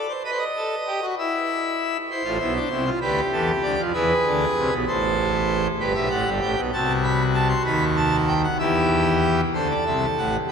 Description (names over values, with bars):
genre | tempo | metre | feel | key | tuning
classical, baroque-style 3-part fugue for pipe organ | 65 BPM (dotted quarters) | 6/8 | straight | A minor | A4 = 440 Hz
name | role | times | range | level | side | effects
pipe organ, full organ | solo | 0.0-10.5 s | G1 to C6 | -20 LUFS | equal | none
room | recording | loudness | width
wet cathedral reverb, RT60 7.4 s | faint mains hum | -20 LUFS | side -6 dB against mid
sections
0.0-9.5 A section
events
none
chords
0.3 B7; 1.2 N.C.; 2.1 Am; 3.0 Bm7b5/D; 3.9 E7; 4.9 Am; 5.8 Em/G; 6.7 F#dim/C; 7.7 B7/D#; 8.6 Em; 9.5 D7